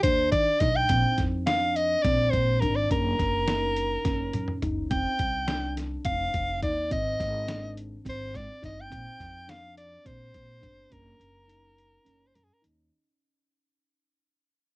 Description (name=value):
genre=progressive instrumental, band music in an uneven meter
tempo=210 BPM (eighths)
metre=7/8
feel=straight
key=unclear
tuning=A4 = 442 Hz
part: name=edgy soprano saxophone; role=melody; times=0.0-12.6 s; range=Ab4 to G5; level=-27 LUFS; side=equal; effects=cassette tape
part: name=handpan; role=arpeggios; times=0.0-12.8 s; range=C4 to Eb4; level=-33 LUFS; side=equal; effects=cassette tape
part: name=upright bass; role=bass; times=0.0-12.9 s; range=F1 to Eb3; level=-31 LUFS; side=equal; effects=none
part: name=lo-fi sampler-style drum kit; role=drums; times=0.0-12.8 s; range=hi-hat, kick drum, snare drum, toms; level=-31 LUFS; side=equal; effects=cassette tape
room=moderate small room reverb, RT60 0.5 s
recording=home recording on cassette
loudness=-24 LUFS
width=side -22 dB against mid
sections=0.0-12.9 A section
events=fade-out 0.0-12.9; drum fill 4.1-4.9; break 11.2-12.9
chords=0.0 Ebmaj7(no3); 0.9 Bb7; 2.9 Gb; 4.9 F5; 6.9 Abmaj7; 8.9 Bb; 10.9 Gb